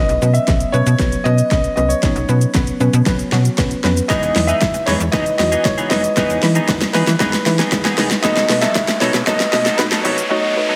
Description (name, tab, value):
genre	dance-pop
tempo	116 BPM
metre	4/4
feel	straight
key	E major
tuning	A4 = 440 Hz
part	clear grand piano	melody	0.0-10.8 s	B4 to E5	-22 LUFS	equal	slapback echo
part	soft round pluck	accompaniment	0.0-10.8 s	F#3 to C#5	-24 LUFS	equal	chorus, sidechain pumping
part	slap-like FM bass	bass	0.0-10.2 s	E1 to E3	-21 LUFS	equal	sidechain pumping
part	deep house drum kit	drums	0.1-10.3 s	hi-hat, kick drum, shaker, snare drum	-21 LUFS	equal	none
part	clean electric guitar	riff	4.1-10.8 s	E3 to A4	-25 LUFS	equal	analog chorus
part	tube shaker	percussion	4.1-10.3 s	none	-40 LUFS	equal	none
part	riser	sound effects	6.9-10.8 s	none	-30 LUFS	equal	none
room	wet lush hall reverb, RT60 2.4 s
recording	big arena sound, high-pass filter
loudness	-16 LUFS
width	mono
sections	0.0-10.8 A section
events	build-up 0.0-10.8; drum fill 0.0-10.3; filter sweep 0.0-10.8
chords	0.0 Bsus2; 4.1 Emaj7; 8.2 B7